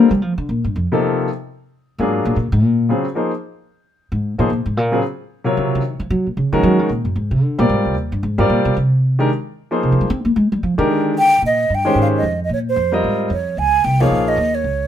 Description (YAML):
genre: modal jazz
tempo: 225 BPM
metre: 4/4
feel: swing 60% on 8ths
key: Bb dorian from 11.4 s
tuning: A4 = 441 Hz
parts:
  - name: clear baby grand piano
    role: accompaniment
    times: 0.0-14.4 s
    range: C3 to Eb5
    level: -18 LUFS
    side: left 1 dB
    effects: none
  - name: upright bass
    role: bass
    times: 0.0-14.9 s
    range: Bb1 to C4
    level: -17 LUFS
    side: equal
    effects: none
  - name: breathy concert flute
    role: melody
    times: 11.2-14.9 s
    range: C5 to Ab5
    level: -16 LUFS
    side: right 2 dB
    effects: none
room: light reverb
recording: minimal, uncompressed stereo recording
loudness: -15 LUFS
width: side -10 dB against mid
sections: 0.0-2.9 A section; 2.9-11.4 A section; 11.4-14.9 B section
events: upright bass solo 0.0-11.4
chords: 0.0 Cm11; 1.8 Bb7b13; 2.9 Ebm11; 7.2 Fm11; 11.4 Bbm11